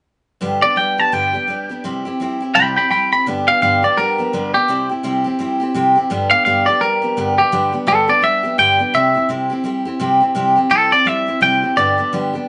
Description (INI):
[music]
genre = rock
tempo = 169 BPM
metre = 4/4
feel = swing 60% on 8ths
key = G major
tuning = A4 = 440 Hz
[part]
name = picked steel-string acoustic guitar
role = accompaniment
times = 0.4-12.5 s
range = G2 to G4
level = -21 LUFS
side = equal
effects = none
[part]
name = twangy electric guitar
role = melody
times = 0.6-12.1 s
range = G4 to B5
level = -16 LUFS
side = equal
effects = none
[sound]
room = moderate studio reverb, RT60 0.7 s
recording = band playing live in one room, nothing above 10.3 kHz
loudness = -16 LUFS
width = mono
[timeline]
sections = 0.4-3.3 A section; 3.3-12.5 B section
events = none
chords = 0.4 G; 1.8 C; 3.3 G; 4.7 C; 6.1 G; 8.9 C; 11.8 G